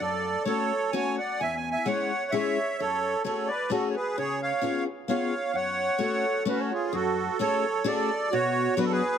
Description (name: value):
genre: musette waltz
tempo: 130 BPM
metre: 3/4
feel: straight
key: F# minor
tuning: A4 = 440 Hz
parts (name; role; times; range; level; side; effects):
- accordion; melody; 0.0-9.2 s; C#4 to G#5; -26 LUFS; right 3 dB; light tremolo tuning
- picked steel-string acoustic guitar; accompaniment; 0.0-9.0 s; E2 to B4; -30 LUFS; left 5 dB; none
- mellow clarinet; second line; 6.0-6.9 s; A4 to C#5; -35 LUFS; equal; none
room: moderate plate reverb, RT60 3.6 s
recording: none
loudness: -25 LUFS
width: side -8 dB against mid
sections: 0.0-6.9 A section; 6.9-9.2 A section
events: none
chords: 0.0 F#m; 1.4 C#m/E; 2.8 F#madd9; 4.2 C#7; 5.5 F#m; 6.9 F#madd9; 8.3 Bm